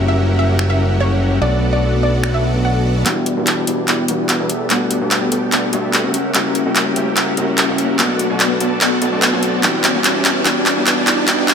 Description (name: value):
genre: future bass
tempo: 146 BPM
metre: 4/4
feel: half-time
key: E minor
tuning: A4 = 440 Hz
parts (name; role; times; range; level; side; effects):
- mellow tine electric piano; accompaniment; 0.0-11.5 s; E3 to F#5; -22 LUFS; left 4 dB; digital delay
- dense compressed supersaw; riff; 0.0-11.5 s; B3 to A5; -19 LUFS; right 1 dB; low-pass filter, digital delay
- fat analog bass; bass; 0.0-11.5 s; E1 to G2; -21 LUFS; equal; high-pass filter
- wide unison pluck; melody; 0.1-2.9 s; C#5 to F#5; -23 LUFS; equal; dub echo
- big-room dance drum kit; drums; 0.6-11.5 s; finger snaps, handclaps, hi-hat; -17 LUFS; right 1 dB; high-pass filter on snare, high-pass filter on hats
- riser; sound effects; 5.6-11.5 s; none; -24 LUFS; right 1 dB; none
room: moderate lush hall reverb, RT60 2.1 s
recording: high-pass filter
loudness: -14 LUFS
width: side -6 dB against mid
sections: 0.0-3.1 A section; 3.1-11.5 B section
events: build-up 3.1-11.5; drum fill 3.1-11.5; filter sweep on supersaw synth 3.1-11.5; riser 5.6-11.5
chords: 0.0 F#7b9; 1.4 Bm7; 3.1 Em7; 4.5 Gmaj9; 6.1 F#7b9; 8.0 Bm7; 9.6 Em7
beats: 0.18 0.59 1.00 | 1.41 1.82 2.24 2.65 | 3.06 3.47 3.88 4.29 | 4.70 5.11 5.52 5.93 | 6.35 6.76 7.17 7.58 | 7.99 8.40 8.81 9.22 | 9.63 10.04 10.46 10.87 | 11.28